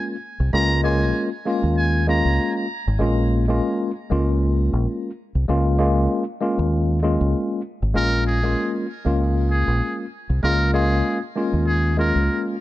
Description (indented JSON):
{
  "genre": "hip hop, boom-bap hip-hop",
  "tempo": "97 BPM",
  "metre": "4/4",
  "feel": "swing 55% on 16ths",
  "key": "Bb minor",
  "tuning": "A4 = 441 Hz",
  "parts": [
    { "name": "trumpet with metal mute", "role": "melody", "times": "0.0-2.5, 8.0-12.4 s", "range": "Ab4 to Bb5", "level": "-26 LUFS", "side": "right 1 dB", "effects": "high-pass filter, low-pass filter, digital delay" },
    { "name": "mellow tine electric piano", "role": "accompaniment", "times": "0.0-12.6 s", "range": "Ab3 to F4", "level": "-22 LUFS", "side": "left 1 dB", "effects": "medium stereo tremolo, cassette tape, high-pass filter, low-pass filter" },
    { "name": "deep dub fingered electric bass", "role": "bass", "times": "0.4-12.3 s", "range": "Ab1 to Eb2", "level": "-20 LUFS", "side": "equal", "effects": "none" }
  ],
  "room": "studio reverb",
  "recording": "none",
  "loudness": "-18 LUFS",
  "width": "side -16 dB against mid",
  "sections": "0.0-8.0 A section; 8.0-12.6 B section",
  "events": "none",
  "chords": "0.0 Bbm7; 0.5 Db6; 3.0 Bbm7; 5.5 Db6; 8.0 Bbm7; 10.4 Db6"
}